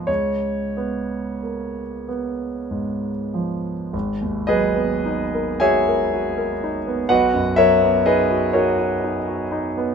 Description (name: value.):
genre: classical, impressionist solo piano.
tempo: 29-42 BPM (dotted quarters).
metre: 6/8.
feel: rubato.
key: G# minor.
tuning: A4 = 439 Hz.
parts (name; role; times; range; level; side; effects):
clear concert grand piano; solo; 0.0-9.9 s; G#1 to G#5; -19 LUFS; equal; none.
room: light reverb.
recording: minimal, uncompressed stereo recording.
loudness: -19 LUFS.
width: side -6 dB against mid.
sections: 0.0-3.9 A section; 3.9-9.9 B section.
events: none.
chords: 0.0 C#13; 3.9 G#m9; 7.1 Badd9.